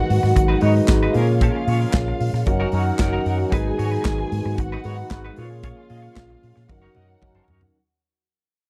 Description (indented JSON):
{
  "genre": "disco",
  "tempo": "114 BPM",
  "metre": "4/4",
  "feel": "straight",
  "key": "G# dorian",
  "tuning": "A4 = 443 Hz",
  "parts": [
    { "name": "dark studio violin section", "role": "second line", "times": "0.0-7.7 s", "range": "D#4 to G#5", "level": "-30 LUFS", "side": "equal", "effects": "none" },
    { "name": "barky tine electric piano", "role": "accompaniment", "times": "0.0-7.8 s", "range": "F#3 to C#5", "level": "-28 LUFS", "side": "equal", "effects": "overdrive, phaser" },
    { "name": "mellow brass ensemble", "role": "sustained chords", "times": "0.0-7.8 s", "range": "C#3 to F#4", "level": "-30 LUFS", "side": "equal", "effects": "none" },
    { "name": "fingered electric bass", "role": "bass", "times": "0.1-7.7 s", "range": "F#1 to A#2", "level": "-24 LUFS", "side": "equal", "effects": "none" },
    { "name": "modern studio drum kit", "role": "drums", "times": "0.1-7.7 s", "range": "handclaps, hi-hat, kick drum, snare drum, toms", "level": "-24 LUFS", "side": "equal", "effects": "none" },
    { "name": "semi-hollow electric guitar", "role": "accompaniment", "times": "0.2-7.7 s", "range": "C#4 to D#5", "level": "-35 LUFS", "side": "equal", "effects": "tremolo" }
  ],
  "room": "small room ambience",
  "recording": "dry, close 1970s-style studio recording",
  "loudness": "-20 LUFS",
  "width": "mono",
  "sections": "0.0-7.8 A section",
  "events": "fade-out 0.0-7.8; drum fill 6.7-7.8",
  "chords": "0.0 G#m7; 1.2 A#m7; 2.5 F#6; 3.5 G#m7; 5.4 A#m7; 6.7 F#6",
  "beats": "0.36 0.89 | 1.42 1.94 2.47 3.00 | 3.53 4.06 4.59 5.12 | 5.64 6.17 6.70 7.23"
}